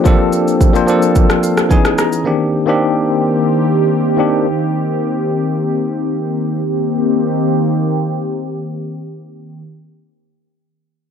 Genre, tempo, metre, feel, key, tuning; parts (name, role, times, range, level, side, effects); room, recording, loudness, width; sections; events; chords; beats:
amapiano; 109 BPM; 4/4; straight; C dorian; A4 = 442 Hz
bell-like tine electric piano; accompaniment; 0.0-4.5 s; Eb3 to Bb5; -14 LUFS; left 2 dB; medium stereo tremolo, low-pass filter
warm analog pad; sustained chords; 0.0-9.6 s; Eb3 to A4; -17 LUFS; equal; chorus, phaser, low-pass filter
afro-pop drum kit; drums; 0.1-2.2 s; kick drum, rim click, shaker; -13 LUFS; equal
light reverb; dark, warm production; -13 LUFS; side -7 dB against mid
0.0-6.7 A section; 6.7-8.9 B section
filter sweep 0.0-6.7; tine electric piano fill 1.2-2.3
0.0 Bbmaj7; 1.7 Dbm7; 2.3 Cm7
| 0.06 0.61 1.16 1.71 | 2.26 2.81 3.36 3.91 | 4.46 5.01 5.56 6.11 | 6.66 7.21 7.76 8.31